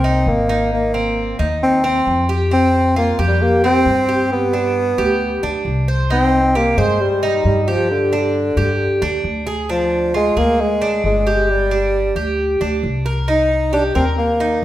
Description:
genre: latin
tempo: 134 BPM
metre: 4/4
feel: straight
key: C minor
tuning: A4 = 440 Hz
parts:
  - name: warm bassoon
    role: melody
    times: 0.0-14.6 s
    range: D3 to Eb4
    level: -16 LUFS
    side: equal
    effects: none
  - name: Cuban tres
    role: arpeggios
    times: 0.0-14.6 s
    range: C4 to C5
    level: -21 LUFS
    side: right 1 dB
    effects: none
  - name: upright bass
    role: bass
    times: 0.0-14.6 s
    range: G1 to G2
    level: -21 LUFS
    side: equal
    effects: none
room: wet recital hall reverb, RT60 1.4 s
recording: recorded in a church or concert hall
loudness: -14 LUFS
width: side -13 dB against mid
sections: 0.0-6.1 A section; 6.1-14.6 A section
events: none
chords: 0.0 Cm7; 0.7 Abadd9; 2.5 Fsus2; 4.3 G; 6.1 Cm; 7.9 G5; 9.7 Ddim; 11.5 G5; 13.3 Cm7

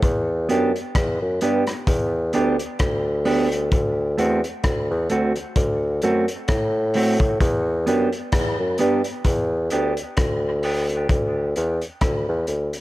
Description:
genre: dub reggae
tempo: 65 BPM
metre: 4/4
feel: swing 56% on 16ths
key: E minor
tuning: A4 = 441 Hz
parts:
  - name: mellow bassoon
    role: bass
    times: 0.0-12.7 s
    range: D2 to A2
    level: -22 LUFS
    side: equal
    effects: none
  - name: crunchy breakbeat drum kit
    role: drums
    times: 0.0-12.8 s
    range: hi-hat, kick drum, rim click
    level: -24 LUFS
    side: equal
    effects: none
  - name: mellow electric guitar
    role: accompaniment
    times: 0.5-10.9 s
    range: A3 to G4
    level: -24 LUFS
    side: right 3 dB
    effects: high-pass filter, dub echo
room: studio ambience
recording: none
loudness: -19 LUFS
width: side -17 dB against mid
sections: 0.0-12.8 A section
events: filter sweep on clean electric guitar 7.4-12.8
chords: 0.0 Em7; 3.7 D7; 7.4 Em7; 11.1 N.C.

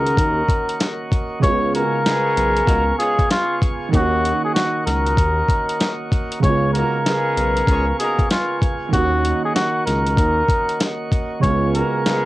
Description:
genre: hip hop, boom-bap hip-hop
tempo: 96 BPM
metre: 4/4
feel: swing 62% on 16ths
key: Eb minor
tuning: A4 = 440 Hz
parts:
  - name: trumpet with cup mute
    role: melody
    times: 0.0-12.3 s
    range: F4 to Db5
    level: -20 LUFS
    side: equal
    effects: high-pass filter, low-pass filter, cassette tape
  - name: dark upright piano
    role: accompaniment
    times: 0.0-12.3 s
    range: Db3 to Gb4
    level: -25 LUFS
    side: right 5 dB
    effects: cassette tape, high-pass filter, low-pass filter
  - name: tonewheel organ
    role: sustained chords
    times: 0.0-12.3 s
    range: Cb4 to Db6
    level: -29 LUFS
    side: equal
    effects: lush chorus, high-pass filter, low-pass filter
  - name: smooth synth bass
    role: bass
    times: 0.0-11.8 s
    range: Cb2 to Eb2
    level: -21 LUFS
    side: left 1 dB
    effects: none
  - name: dusty soul sampler-style drum kit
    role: drums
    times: 0.1-12.2 s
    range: hi-hat, kick drum, snare drum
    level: -20 LUFS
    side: equal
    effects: cassette tape
  - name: mellow horn section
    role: stabs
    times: 1.7-12.3 s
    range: Ab3 to Db5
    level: -27 LUFS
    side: left 1 dB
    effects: high-pass filter, low-pass filter, analog delay
room: light reverb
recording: home recording on cassette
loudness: -16 LUFS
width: side -17 dB against mid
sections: 0.0-12.3 A section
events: none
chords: 0.0 Ebm7; 1.4 Db7; 3.9 Ebm7; 6.4 Db7; 8.9 Ebm7; 11.4 Db7

